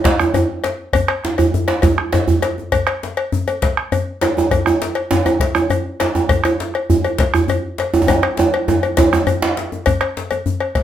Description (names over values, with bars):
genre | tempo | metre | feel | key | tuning
west african traditional, West African drum ensemble | 134 BPM (dotted quarters) | 12/8 | straight | none | none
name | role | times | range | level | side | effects
bombo | percussion | 0.0-10.8 s | none | -19 LUFS | equal | none
cowbell | percussion | 0.0-10.8 s | none | -20 LUFS | left 5 dB | none
djembe | percussion | 0.1-10.8 s | none | -22 LUFS | left 4 dB | none
djembe | percussion | 0.1-9.6 s | none | -16 LUFS | right 3 dB | none
room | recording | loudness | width
moderate studio reverb, RT60 0.6 s | none | -15 LUFS | side -10 dB against mid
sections
0.0-9.9 A section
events
drum fill 8.1-9.9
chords
none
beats
0.05 0.49 | 0.94 1.39 1.83 2.28 | 2.73 3.17 3.62 4.07 | 4.51 4.96 5.40 5.85 | 6.30 6.74 7.19 7.63 | 8.08 8.53 8.97 9.42 | 9.86 10.31 10.76